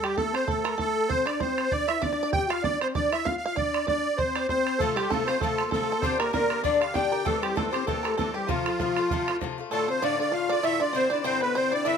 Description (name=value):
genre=celtic folk, Celtic reel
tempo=195 BPM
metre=4/4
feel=swing 55% on 8ths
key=F major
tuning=A4 = 440 Hz
part: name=musette accordion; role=melody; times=0.0-12.0 s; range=F4 to G5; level=-26 LUFS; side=right 2 dB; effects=plate reverb
part: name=bluegrass banjo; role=second line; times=0.0-12.0 s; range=F4 to G5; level=-34 LUFS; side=right 5 dB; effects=none
part: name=dark trombone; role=second line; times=0.0-12.0 s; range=F3 to G4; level=-32 LUFS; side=left 8 dB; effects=none
part: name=bodhran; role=percussion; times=0.0-9.5 s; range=none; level=-31 LUFS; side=right 5 dB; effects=none
part: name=Irish bouzouki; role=accompaniment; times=4.8-12.0 s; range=G2 to G4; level=-30 LUFS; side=left 8 dB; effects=none
room=moderate studio reverb, RT60 0.5 s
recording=close, detailed microphones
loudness=-24 LUFS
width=side -7 dB against mid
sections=0.0-9.7 A section; 9.7-12.0 B section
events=none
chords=0.0 N.C.; 4.8 F; 6.0 Gm; 7.3 C; 8.5 F; 9.7 Dm; 10.9 Cadd9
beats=0.17 0.48 0.79 | 1.10 1.41 1.72 2.03 | 2.33 2.64 2.95 3.26 | 3.57 3.88 4.18 4.49 | 4.80 5.11 5.42 5.72 | 6.03 6.34 6.64 6.95 | 7.26 7.57 7.87 8.18 | 8.49 8.79 9.10 9.41 | 9.71 10.02 10.33 10.63 | 10.94 11.25 11.55 11.86